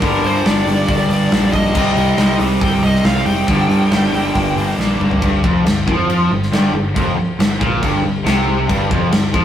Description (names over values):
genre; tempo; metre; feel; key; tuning
hard rock; 138 BPM; 4/4; straight; G minor; A4 = 440 Hz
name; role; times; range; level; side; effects
high-gain lead guitar; melody; 0.0-4.7 s; Bb4 to G5; -21 LUFS; equal; distortion
high-gain distorted guitar; riff; 0.0-9.4 s; F2 to Eb4; -24 LUFS; equal; distortion
overdriven semi-hollow guitar; riff; 0.0-9.4 s; F2 to C4; -18 LUFS; left 2 dB; none
overdriven semi-hollow guitar; riff; 0.0-9.4 s; F2 to C4; -23 LUFS; right 4 dB; none
picked electric bass; bass; 0.0-9.4 s; F1 to G2; -21 LUFS; equal; none
big rock drum kit; drums; 0.0-9.4 s; crash cymbal, hi-hat, kick drum, snare drum, toms; -18 LUFS; equal; none
room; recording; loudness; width
moderate stone room reverb, RT60 1.2 s; rough rehearsal-room recording; -13 LUFS; side -10 dB against mid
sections
0.0-5.2 A section; 5.2-9.4 B section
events
drum fill 4.8-5.2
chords
0.0 Gm; 1.8 Cm; 3.5 Gm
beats
| 0.02 0.46 0.89 1.32 | 1.75 2.19 2.62 3.05 | 3.48 3.92 4.35 4.78 | 5.22 5.65 6.08 6.52 | 6.95 7.39 7.82 8.25 | 8.69 9.12